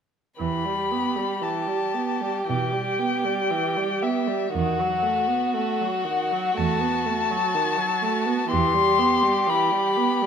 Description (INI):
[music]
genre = classical, slow romantic movement for string quartet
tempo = 56-62 BPM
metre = 4/4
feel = rubato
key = E minor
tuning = A4 = 440 Hz
[part]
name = muted violin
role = melody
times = 0.4-10.3 s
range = E5 to C6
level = -24 LUFS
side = left 6 dB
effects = none
[part]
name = muted violin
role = second line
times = 0.4-10.3 s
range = F#4 to G4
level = -28 LUFS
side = right 2 dB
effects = none
[part]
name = muted viola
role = accompaniment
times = 0.4-10.3 s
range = D#3 to B3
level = -27 LUFS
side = right 6 dB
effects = none
[part]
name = muted cello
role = bass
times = 0.4-9.3 s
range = E2 to B2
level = -30 LUFS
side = right 5 dB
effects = none
[sound]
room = moderate recital hall reverb, RT60 1.6 s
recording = minimal, uncompressed stereo recording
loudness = -21 LUFS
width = side -7 dB against mid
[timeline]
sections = 0.4-10.3 A section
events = none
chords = 0.4 Em; 4.5 B7/E; 8.5 Em